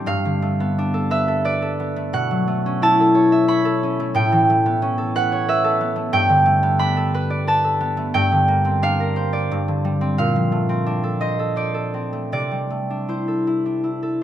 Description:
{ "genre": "classical, solo harp piece", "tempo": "77-93 BPM", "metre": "3/4", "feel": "rubato", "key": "unclear", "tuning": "A4 = 440 Hz", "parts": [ { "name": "concert harp", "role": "solo", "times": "0.0-14.2 s", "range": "G2 to B5", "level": "-17 LUFS", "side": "equal", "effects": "none" } ], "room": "moderate recital hall reverb, RT60 1.8 s", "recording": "close, detailed microphones", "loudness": "-17 LUFS", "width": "side -11 dB against mid", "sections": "0.0-14.2 A section", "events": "none", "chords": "0.1 G9; 2.1 Bm11; 4.2 A9; 6.1 Gadd9; 8.1 Bb69/G; 9.5 Dm7/G; 10.2 Bbmaj9; 12.3 C69" }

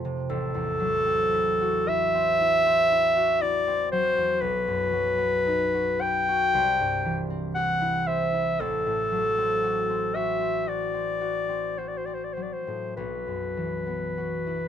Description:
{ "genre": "classical, romantic duo for clarinet and harp", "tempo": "57 BPM", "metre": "4/4", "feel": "uneven beats, rubato", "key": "unclear", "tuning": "A4 = 440 Hz", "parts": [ { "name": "concert harp", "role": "accompaniment", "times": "0.0-14.7 s", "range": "A1 to C5", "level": "-30 LUFS", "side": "left 1 dB", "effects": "none" }, { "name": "mellow clarinet", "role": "melody", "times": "0.3-14.7 s", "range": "A4 to G5", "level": "-24 LUFS", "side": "equal", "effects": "none" } ], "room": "little or no reverb", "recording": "close, detailed microphones", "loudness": "-23 LUFS", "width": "side -9 dB against mid", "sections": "0.0-14.7 A section", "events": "none", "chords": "0.3 F#m7b5/A; 4.4 B; 6.5 C; 8.6 F#dim/A; 13.0 Bsus4" }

